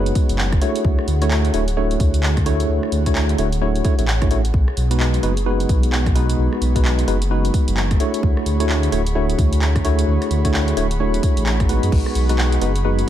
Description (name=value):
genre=UK garage, two-step garage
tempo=130 BPM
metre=4/4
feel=swing 61% on 16ths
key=unclear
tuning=A4 = 439 Hz
part: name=tine electric piano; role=stabs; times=0.0-13.1 s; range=G#3 to C#5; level=-22 LUFS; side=equal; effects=overdrive, fast stereo tremolo, dub echo
part: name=dark detuned saw bass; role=bass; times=0.0-13.0 s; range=D1 to F#2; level=-19 LUFS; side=equal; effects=none
part: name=airy breathy pad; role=texture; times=0.0-13.1 s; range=G#4 to C#6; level=-30 LUFS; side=right 2 dB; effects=chorus, sidechain pumping
part: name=punchy analog drum machine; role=drums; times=0.1-13.1 s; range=crash cymbal, handclaps, hi-hat, rim click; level=-27 LUFS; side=equal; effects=none
part: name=electronic kick drum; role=drums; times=0.2-12.0 s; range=none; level=-19 LUFS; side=equal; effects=none
room=little or no reverb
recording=dark, warm production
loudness=-16 LUFS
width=side -11 dB against mid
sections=0.0-13.1 A section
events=none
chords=0.0 B6; 0.6 Dmaj9; 4.5 B6; 8.0 Dmaj9; 11.9 B6